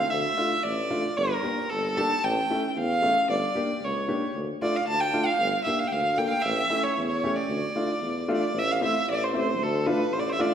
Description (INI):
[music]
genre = klezmer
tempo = 114 BPM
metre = 2/4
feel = straight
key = D harmonic minor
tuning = A4 = 442 Hz
[part]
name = warm violin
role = melody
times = 0.0-10.5 s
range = A4 to A5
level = -26 LUFS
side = right 1 dB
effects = none
[part]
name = warm tuba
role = bass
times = 0.0-10.4 s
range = G1 to E2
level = -31 LUFS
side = equal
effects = none
[part]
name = warm upright piano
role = accompaniment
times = 0.4-10.5 s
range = A3 to A4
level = -29 LUFS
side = left 1 dB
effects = none
[sound]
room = wet recital hall reverb, RT60 1.6 s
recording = recorded in a church or concert hall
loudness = -23 LUFS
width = side -8 dB against mid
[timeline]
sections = 0.1-8.6 A section; 8.6-10.5 B section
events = none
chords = 0.1 Dm; 1.2 Gm; 2.2 A; 3.3 Gm; 4.3 Dm; 5.4 Gm; 6.5 A; 7.5 Dm; 8.6 Am; 9.6 Dm